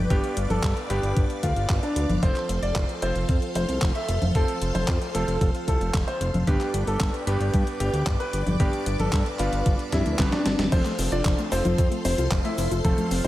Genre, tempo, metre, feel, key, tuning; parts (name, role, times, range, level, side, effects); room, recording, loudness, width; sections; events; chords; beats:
italo disco; 113 BPM; 4/4; straight; F lydian; A4 = 440 Hz
string machine, full ensemble; sustained chords; 0.0-13.3 s; A4 to D6; -33 LUFS; left 1 dB; phaser, ensemble chorus
bright electric grand piano; stabs; 0.0-13.3 s; G2 to C5; -33 LUFS; right 2 dB
fat analog bass; bass; 0.0-13.3 s; F1 to G2; -26 LUFS; equal
clear concert grand piano; melody; 0.1-13.3 s; A3 to E5; -30 LUFS; equal; tape echo
clean 12-bit digital drum machine; drums; 0.1-13.3 s; cabasa, congas, crash cymbal, handclaps, hi-hat, snare drum; -30 LUFS; left 1 dB; overdrive, gated reverb
electronic kick drum; drums; 0.1-13.0 s; -24 LUFS; equal; overdrive
soft round pluck; arpeggios; 10.7-13.3 s; F3 to F4; -31 LUFS; left 3 dB; chorus, cassette tape, digital delay
light reverb; -22 LUFS; side -15 dB against mid
0.0-10.7 A section; 10.7-13.3 B section
drum fill 9.9-10.7
0.0 G; 2.2 F; 6.5 G; 10.7 F
| 0.10 0.63 1.17 1.70 | 2.23 2.76 3.29 3.82 | 4.35 4.88 5.41 5.94 | 6.47 7.01 7.54 8.07 | 8.60 9.13 9.66 10.19 | 10.72 11.25 11.78 12.31 | 12.85